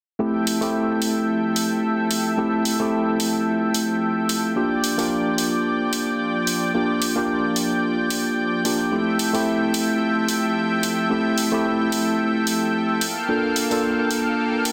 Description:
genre	nu-disco, nu disco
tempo	110 BPM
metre	4/4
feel	swing 55% on 16ths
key	F major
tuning	A4 = 441 Hz
part	tine electric piano	accompaniment	0.2-14.7 s	A3 to A4	-24 LUFS	equal	digital delay
part	lush unison pad	sustained chords	0.2-14.7 s	F3 to G5	-27 LUFS	equal	chorus
part	electronic hi-hat	drums	0.5-14.7 s	none	-29 LUFS	equal	none
room	wet digital room reverb, RT60 1.2 s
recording	dense, heavily limited modern master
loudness	-22 LUFS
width	mono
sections	0.2-14.7 A section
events	none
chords	0.2 Fmaj9; 4.6 Bb6/F; 8.9 Fmaj9; 13.0 Gm9

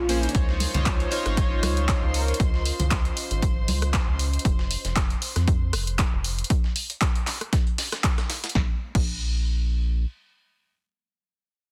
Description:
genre	deep house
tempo	117 BPM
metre	4/4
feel	swing 55% on 16ths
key	unclear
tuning	A4 = 440 Hz
part	breathy flute-like synth lead	melody	0.0-2.3 s	F4 to Db5	-34 LUFS	equal	analog chorus, tape echo
part	rubbery square bass	bass	0.0-10.1 s	F1 to F2	-28 LUFS	equal	sidechain pumping
part	muted chamber violin section	texture	0.0-6.5 s	Db4 to C6	-41 LUFS	equal	none
part	warbly tape-like pad	texture	0.0-4.5 s	Db4 to Ab5	-42 LUFS	equal	chorus, built-in reverb, sidechain pumping
part	chorused polysynth	stabs	0.1-2.4 s	Bb3 to Db5	-32 LUFS	equal	sidechain pumping, digital delay
part	dusty soul sampler-style drum kit	drums	0.1-8.5 s	hi-hat, snare drum	-39 LUFS	equal	none
part	punchy analog drum machine	drums	0.1-9.1 s	crash cymbal, handclaps, hi-hat, rim click, snare drum	-32 LUFS	equal	overdrive
part	electronic kick drum	drums	0.3-9.1 s	none	-26 LUFS	equal	overdrive
part	congas	percussion	0.6-3.8 s	none	-34 LUFS	equal	none
room	digital ambience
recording	dense, heavily limited modern master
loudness	-24 LUFS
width	mono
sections	0.0-8.6 A section; 8.6-11.7 B section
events	drop 0.0-8.6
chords	0.3 Dbmaj9; 4.5 F5; 8.6 N.C.

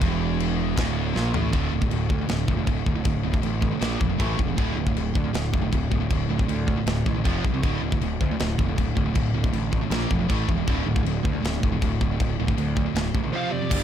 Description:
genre	heavy metal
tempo	158 BPM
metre	4/4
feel	straight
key	D minor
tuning	A4 = 440 Hz
part	scooped high-gain guitar	riff	0.0-13.8 s	D2 to Bb3	-30 LUFS	left 10 dB	distortion
part	sludgy distorted guitar	riff	0.0-13.8 s	D2 to Bb3	-28 LUFS	right 11 dB	overdrive
part	fuzz picked electric bass	bass	0.0-13.8 s	D1 to D2	-27 LUFS	left 1 dB	overdrive
part	tight metal drum kit	drums	0.0-13.8 s	china cymbal, crash cymbal, kick drum, snare drum, toms	-26 LUFS	left 1 dB	none
part	dark smooth lead guitar	second line	13.3-13.8 s	G4 to C5	-34 LUFS	right 4 dB	overdrive
part	bluesy overdriven lead guitar	melody	13.4-13.8 s	D5 to F5	-29 LUFS	right 1 dB	distortion
room	little or no reverb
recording	none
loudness	-22 LUFS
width	side -9 dB against mid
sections	0.0-1.5 A section; 1.5-13.7 B section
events	drum fill 1.2-1.5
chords	0.0 D5; 3.8 Bb5; 4.2 A5; 4.6 D5; 7.3 F5; 7.6 D5; 9.9 Bb5; 10.3 A5; 10.7 D5; 13.3 F5

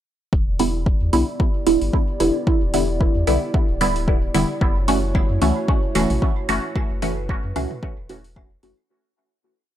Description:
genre	dub techno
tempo	112 BPM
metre	4/4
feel	swing 56% on 16ths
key	E dorian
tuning	A4 = 440 Hz
part	dark analog pad	sustained chords	0.3-8.9 s	A3 to D5	-30 LUFS	right 1 dB	chorus, sidechain pumping
part	pure sine sub bass	bass	0.3-8.7 s	D1 to F#2	-24 LUFS	equal	sidechain pumping
part	electronic kick drum	drums	0.3-8.5 s	none	-20 LUFS	equal	overdrive
part	filtered dub chord stab	stabs	0.6-8.7 s	D3 to F#4	-21 LUFS	right 1 dB	phaser, sidechain pumping, dub echo
part	electronic hi-hat	drums	0.6-8.8 s	none	-32 LUFS	equal	overdrive
part	electronic claves and toms	percussion	5.1-8.5 s	none	-34 LUFS	right 2 dB	sidechain pumping on perc, sidechain pumping on toms, dub echo
room	little or no reverb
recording	dry, gritty hardware recording, transformer saturation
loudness	-18 LUFS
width	side -11 dB against mid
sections	0.3-8.9 groove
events	fade-out 6.0-8.9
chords	0.3 Em7; 4.6 F#m7

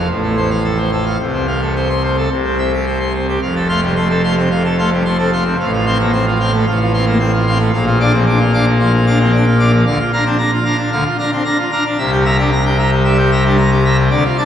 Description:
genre	classical, organ toccata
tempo	112 BPM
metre	4/4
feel	straight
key	F major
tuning	A4 = 441 Hz
part	pipe organ, full organ	solo	0.0-14.4 s	F1 to D6	-12 LUFS	equal	none
room	wet cathedral reverb, RT60 6.7 s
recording	studio reverb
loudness	-12 LUFS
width	side -9 dB against mid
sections	0.0-3.4 A section; 3.4-14.4 B section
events	none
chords	0.1 F/A; 1.2 F/C; 2.3 C; 3.4 F; 5.6 F/A; 7.7 Bb; 9.9 Bb/D; 12.0 C7

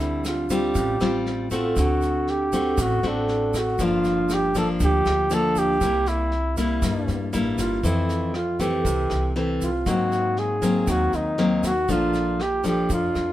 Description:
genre	bossa nova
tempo	119 BPM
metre	4/4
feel	straight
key	D minor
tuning	A4 = 440 Hz
part	mellow flugelhorn	melody	0.0-13.3 s	D4 to A4	-24 LUFS	right 1 dB	none
part	nylon-string guitar	accompaniment	0.0-13.3 s	F2 to F#4	-24 LUFS	left 1 dB	none
part	upright bass	bass	0.0-13.3 s	G1 to G#2	-28 LUFS	right 1 dB	none
part	vintage brush drum kit	drums	0.0-13.3 s	kick drum, rim click, snare drum	-33 LUFS	equal	none
part	tube shaker	percussion	0.2-13.3 s	none	-40 LUFS	right 4 dB	none
room	light reverb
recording	band playing live in one room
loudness	-20 LUFS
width	side -14 dB against mid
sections	0.0-13.3 A section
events	none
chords	0.0 Dm11; 1.8 D7; 3.8 Gm7; 5.8 C7; 7.8 Fmaj7; 9.9 G#9; 11.9 Bbmaj7

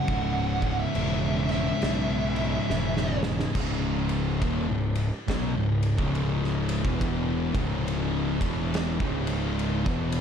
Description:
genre	stoner and doom metal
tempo	69 BPM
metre	4/4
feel	swing 62% on 8ths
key	C# minor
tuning	A4 = 441 Hz
part	fuzz lead guitar	melody	0.0-3.2 s	E5 to F#5	-31 LUFS	right 2 dB	distortion, slapback echo
part	distorted electric guitar	riff	0.0-10.2 s	C#2 to E4	-34 LUFS	equal	overdrive
part	thick fuzz guitar	riff	0.0-10.2 s	C#2 to F#3	-30 LUFS	left 8 dB	distortion
part	thick fuzz guitar	riff	0.0-10.2 s	C#2 to F#3	-32 LUFS	right 9 dB	distortion
part	fuzz picked electric bass	bass	0.1-10.2 s	C#1 to B1	-30 LUFS	right 1 dB	overdrive
part	oversized low-tuned drum kit	drums	0.1-10.2 s	crash cymbal, kick drum, ride cymbal, snare drum	-31 LUFS	equal	none
room	little or no reverb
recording	dark, warm production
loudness	-24 LUFS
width	side -8 dB against mid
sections	0.0-3.5 A section; 3.5-10.2 B section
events	drum fill 2.7-3.5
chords	0.1 C#m

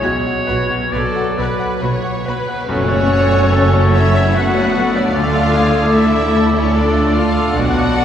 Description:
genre	cinematic, emotional film score for orchestra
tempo	65-75 BPM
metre	3/4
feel	rubato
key	F# minor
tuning	A4 = 440 Hz
part	warm symphonic violin section	melody	0.0-8.0 s	C#5 to B5	-23 LUFS	left 3 dB	none
part	clear oboe	second line	0.0-8.0 s	F#4 to D5	-24 LUFS	right 1 dB	none
part	warm symphonic violin section	second line	0.0-8.0 s	C#4 to F#4	-24 LUFS	left 1 dB	none
part	bright grand piano	accompaniment	0.0-8.0 s	B1 to F#5	-21 LUFS	left 1 dB	none
part	rich symphonic viola section	accompaniment	0.0-8.0 s	A3 to C#5	-22 LUFS	right 1 dB	none
part	mellow French horn section	sustained chords	0.0-8.0 s	F#3 to F#4	-21 LUFS	left 2 dB	none
part	warm symphonic cello section	bass	0.0-8.0 s	F#2 to D3	-21 LUFS	right 1 dB	none
part	warm symphonic double bass section	bass	0.0-8.0 s	F#1 to D2	-21 LUFS	right 2 dB	none
part	cymbal swell and tam-tam	percussion	0.0-5.9 s	none	-27 LUFS	left 2 dB	none
part	bright clarinet	second line	2.7-8.0 s	F#4 to A4	-25 LUFS	left 1 dB	none
part	silver concert flute	second line	2.7-8.0 s	C#6 to D6	-25 LUFS	right 1 dB	none
room	wet concert hall reverb, RT60 2.5 s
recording	recorded in a church or concert hall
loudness	-13 LUFS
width	side -9 dB against mid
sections	0.0-2.7 A section; 2.7-8.0 B section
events	band accent 2.7-3.5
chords	0.0 Bm; 2.7 F#m; 5.1 Dm

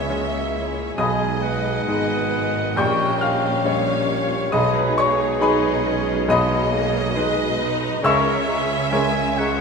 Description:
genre	classical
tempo	68 BPM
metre	4/4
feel	rubato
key	G# minor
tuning	A4 = 441 Hz
part	clear baby grand piano	melody	0.0-9.6 s	Bb1 to G6	-23 LUFS	left 1 dB	none
part	warm studio violin section	melody	0.0-9.6 s	B4 to E5	-32 LUFS	left 5 dB	none
part	mellow clarinet	second line	0.0-9.6 s	B4 to G#5	-28 LUFS	equal	none
part	rich studio violin section	second line	0.0-9.6 s	B4 to G5	-30 LUFS	left 1 dB	none
part	rich studio viola section	accompaniment	0.0-9.6 s	G#3 to B4	-29 LUFS	right 2 dB	none
part	warm French horn section	sustained chords	0.0-8.4 s	G3 to D#4	-31 LUFS	left 3 dB	none
part	dark trumpet section	stabs	0.0-8.4 s	G#4 to Db5	-28 LUFS	right 1 dB	none
part	rich studio cello section	bass	0.0-9.6 s	G#2 to C#3	-31 LUFS	right 2 dB	none
part	rich studio double bass section	bass	0.0-9.6 s	G#1 to C#2	-32 LUFS	right 3 dB	none
part	warm tuba	bass	0.0-9.6 s	G#1 to C#2	-32 LUFS	right 4 dB	none
part	mellow hollow concert flute	second line	1.0-9.5 s	G#5 to Db6	-32 LUFS	left 2 dB	none
part	warm oboe	second line	1.0-9.6 s	Db5 to D#5	-33 LUFS	left 1 dB	none
part	dark bassoon	accompaniment	1.0-9.6 s	G3 to G#3	-30 LUFS	right 1 dB	none
room	wet scoring stage reverb, RT60 2.0 s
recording	minimal, uncompressed stereo recording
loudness	-18 LUFS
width	side -5 dB against mid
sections	0.0-9.6 A section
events	none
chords	0.0 C#m; 1.0 G#m/B; 2.8 Gdim/Bb; 4.5 G#m/B; 8.0 A#m7b5/C#

